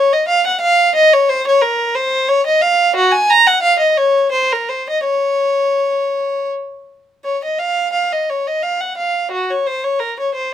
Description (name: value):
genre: classical, baroque-style suite movement for unaccompanied violin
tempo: 80-90 BPM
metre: 3/4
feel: rubato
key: Db major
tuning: A4 = 440 Hz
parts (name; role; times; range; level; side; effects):
- warm violin; solo; 0.0-10.5 s; Gb4 to Bb5; -13 LUFS; equal; none
room: light reverb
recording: none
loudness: -13 LUFS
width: side -10 dB against mid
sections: 0.0-7.2 A section; 7.2-10.5 A section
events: none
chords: none